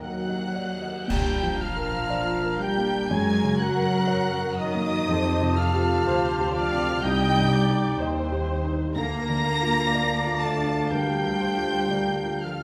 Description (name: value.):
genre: cinematic, emotional film score for orchestra.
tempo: 61 BPM.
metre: 4/4.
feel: rubato.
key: Bb major.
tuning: A4 = 442 Hz.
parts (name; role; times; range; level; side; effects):
warm symphonic violin section; melody; 0.0-12.6 s; Eb6 to Bb6; -36 LUFS; equal; none.
concert flute; second line; 0.0-12.6 s; F5 to Bb5; -36 LUFS; equal; none.
dark clarinet; second line; 0.0-12.6 s; D4 to G4; -38 LUFS; equal; none.
warm oboe; second line; 0.0-12.6 s; Eb5 to Bb5; -35 LUFS; equal; none.
warm symphonic violin section; second line; 0.0-12.6 s; Eb5 to Bb5; -36 LUFS; equal; none.
dark studio viola section; accompaniment; 0.0-12.6 s; Bb3 to Eb5; -37 LUFS; equal; none.
felt-muted upright piano; accompaniment; 0.0-12.6 s; C2 to Eb5; -32 LUFS; equal; none.
dark French horn section; sustained chords; 0.0-12.6 s; Gb3 to Bb4; -33 LUFS; equal; none.
rich symphonic cello section; bass; 0.0-12.6 s; Eb3 to Bb3; -33 LUFS; equal; none.
warm symphonic double bass section; bass; 0.0-12.6 s; Bb1 to Gb2; -32 LUFS; equal; none.
clash cymbals and concert bass drum; percussion; 1.1-3.1 s; none; -36 LUFS; equal; none.
room: moderate scoring stage reverb, RT60 1.6 s.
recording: none.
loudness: -24 LUFS.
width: mono.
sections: 0.0-1.1 A section; 1.1-12.6 B section.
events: band accent 1.1-2.1.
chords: 0.0 Eb; 1.1 Bb; 3.1 Gb; 5.1 Fadd9; 7.0 Cm; 9.0 Bb/D.